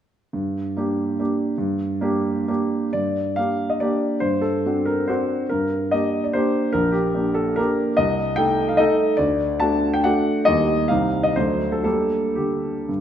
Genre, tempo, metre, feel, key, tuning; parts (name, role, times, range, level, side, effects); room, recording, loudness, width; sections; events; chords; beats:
classical, romantic triple-time dance for piano with dotted rhythms; 111-157 BPM; 3/4; rubato; G minor; A4 = 440 Hz
warm grand piano; solo; 0.3-13.0 s; Bb1 to A5; -19 LUFS; equal
moderate recital hall reverb, RT60 1.7 s; -19 LUFS; side -9 dB against mid
0.3-2.9 A section; 2.9-13.0 B section
0.3 Gm; 4.2 D7/G; 5.5 Gm; 6.7 Gm/Bb; 8.0 Adim/C; 9.2 D; 10.5 Eb; 10.9 Cm; 11.4 D7; 11.8 Gm
| 0.34 0.77 1.20 | 1.59 2.02 2.49 | 2.94 3.37 3.81 | 4.22 4.65 5.09 | 5.50 5.92 6.34 | 6.74 7.16 7.58 | 7.98 8.38 8.79 | 9.19 9.60 10.04 | 10.45 10.89 11.35 | 11.85 12.37 12.88